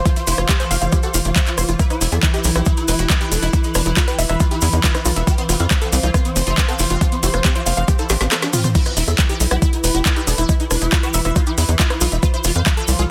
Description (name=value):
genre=psychedelic trance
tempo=138 BPM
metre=4/4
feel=straight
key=unclear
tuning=A4 = 441 Hz
part: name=swarming drone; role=sustained chords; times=0.0-13.1 s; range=E3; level=-32 LUFS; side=equal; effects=built-in reverb, sidechain pumping
part: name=warbly tape-like pad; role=texture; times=0.0-13.1 s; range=E4 to C6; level=-30 LUFS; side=equal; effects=chorus, built-in reverb, sidechain pumping
part: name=swarming rave lead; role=melody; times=0.1-13.0 s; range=C4 to C5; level=-30 LUFS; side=equal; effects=chorus, phaser, sidechain pumping, dub echo
part: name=unison pluck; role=riff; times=0.1-13.0 s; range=D4 to F5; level=-29 LUFS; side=equal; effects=sidechain pumping, dub echo
part: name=electronic kick drum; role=drums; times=0.1-12.8 s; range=none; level=-19 LUFS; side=equal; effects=overdrive
part: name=garage drum kit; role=drums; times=0.1-13.1 s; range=crash cymbal, handclaps, hi-hat, rim click, snare drum, toms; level=-24 LUFS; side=equal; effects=overdrive
part: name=cabasa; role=percussion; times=0.1-13.1 s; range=none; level=-30 LUFS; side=equal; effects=none
part: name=tight sequencer bass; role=bass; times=0.3-13.1 s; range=E1 to F2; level=-21 LUFS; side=equal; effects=none
room=digital ambience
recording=dense, heavily limited modern master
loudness=-17 LUFS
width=mono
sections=0.0-13.1 A section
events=drum fill 8.1-8.8; kick drops out 8.3-8.8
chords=0.0 F5; 1.8 E5; 5.3 F5; 8.8 E5; 12.2 F5